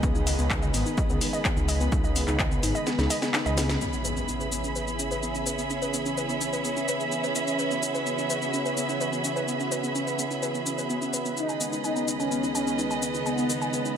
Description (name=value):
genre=melodic techno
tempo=127 BPM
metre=4/4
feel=straight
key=C# minor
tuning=A4 = 440 Hz
part: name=lush unison pad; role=sustained chords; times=0.0-14.0 s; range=C#2 to G#4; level=-33 LUFS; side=equal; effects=chorus, sidechain pumping
part: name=warbly dusty pluck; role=arpeggios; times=0.0-13.9 s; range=B3 to G#5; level=-32 LUFS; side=equal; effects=chorus, cassette tape, sidechain pumping, ping-pong delay
part: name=dark detuned saw bass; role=bass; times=0.0-3.8 s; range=G#1 to C#2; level=-27 LUFS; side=equal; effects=sidechain pumping
part: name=analog drone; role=drone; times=0.0-14.0 s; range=C#3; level=-39 LUFS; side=left 2 dB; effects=chorus, sidechain pumping
part: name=electronic kick drum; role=drums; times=0.0-2.5 s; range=none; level=-28 LUFS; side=equal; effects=overdrive
part: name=techno drum kit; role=drums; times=0.0-13.9 s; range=handclaps, hi-hat, shaker, snare drum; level=-30 LUFS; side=left 2 dB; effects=none
part: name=rich chamber string section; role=texture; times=0.0-14.0 s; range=C#3 to B5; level=-31 LUFS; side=right 3 dB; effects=sidechain pumping
part: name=impact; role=sound effects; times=3.8-5.7 s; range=none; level=-36 LUFS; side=equal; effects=none
part: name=expressive synth lead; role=melody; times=11.4-13.5 s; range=B3 to D#4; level=-30 LUFS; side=equal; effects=wide subtle chorus, sidechain pumping, digital delay
room=moderate lush hall reverb, RT60 1.8 s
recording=none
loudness=-24 LUFS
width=side -8 dB against mid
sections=0.0-3.8 A section; 3.8-14.0 B section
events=filter sweep on synth arpeggio sound 0.0-3.8; kick drops out 2.9-3.8; drum fill 2.9-3.8; band accent 3.7; impact 3.8-5.7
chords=0.0 G#m; 3.8 C#m7; 11.4 G#m/C#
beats=| 0.03 0.51 0.98 1.45 | 1.92 2.39 2.87 3.34 | 3.81 4.28 4.76 5.23 | 5.70 6.17 6.65 7.12 | 7.59 8.06 8.54 9.01 | 9.48 9.95 10.43 10.90 | 11.37 11.84 12.32 12.79 | 13.26 13.73